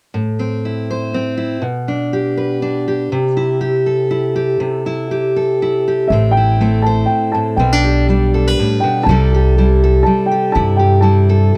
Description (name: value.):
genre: acoustic folk duo or small band.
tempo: 121 BPM.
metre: 3/4.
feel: straight.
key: C major.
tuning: A4 = 438 Hz.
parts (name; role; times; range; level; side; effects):
fingerpicked steel-string acoustic guitar; accompaniment; 0.1-11.6 s; A2 to C5; -18 LUFS; equal; none.
dark upright piano; melody; 6.1-11.6 s; E5 to A5; -20 LUFS; equal; none.
upright bass; bass; 6.1-11.5 s; A1 to G2; -16 LUFS; equal; none.
room: little or no reverb.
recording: dry, close 1970s-style studio recording.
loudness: -15 LUFS.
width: mono.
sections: 0.1-6.1 A section; 6.1-11.6 B section.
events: none.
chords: 0.1 Am; 1.6 G/B; 3.1 C6; 6.1 Am; 7.6 G/B; 9.1 C6.